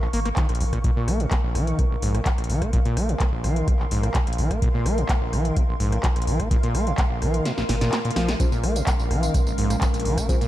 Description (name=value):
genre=acid house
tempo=127 BPM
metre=4/4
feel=straight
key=Bb minor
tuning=A4 = 440 Hz
part: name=overdriven acid bass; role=riff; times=0.0-10.5 s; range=Bb1 to Bb3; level=-26 LUFS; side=equal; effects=sidechain pumping, analog delay
part: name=electro analog drum machine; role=drums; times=0.0-10.5 s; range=handclaps, hi-hat, rim click, snare drum, tambourine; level=-30 LUFS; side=equal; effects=none
part: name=granular cloud pad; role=texture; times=0.0-10.5 s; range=Bb4 to Db6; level=-32 LUFS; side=equal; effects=built-in reverb, ensemble chorus, sidechain pumping
part: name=warm sub bass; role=bass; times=0.1-10.2 s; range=Ab1 to Bb1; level=-25 LUFS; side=equal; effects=sidechain pumping
part: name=electronic kick drum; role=drums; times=0.4-10.4 s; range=none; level=-23 LUFS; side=equal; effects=none
part: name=dark analog pad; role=sustained chords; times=9.0-10.5 s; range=Ab3 to Bb4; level=-31 LUFS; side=right 2 dB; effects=chorus, phaser, sidechain pumping
part: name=deep mellow chord stab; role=stabs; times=8.4-10.4 s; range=Db4 to C5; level=-32 LUFS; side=left 2 dB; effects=chorus, cassette tape, analog delay
room=light reverb, digital ambience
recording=none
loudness=-20 LUFS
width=side -14 dB against mid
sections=0.0-10.5 A section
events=kick drops out 7.5-8.4; drum fill 7.5-8.4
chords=0.0 Bbm7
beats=0.37 | 0.84 1.31 1.79 2.26 | 2.73 3.20 3.67 4.15 | 4.62 5.09 5.57 6.04 | 6.51 6.98 7.46 7.93 | 8.40 8.87 9.35 9.82 | 10.29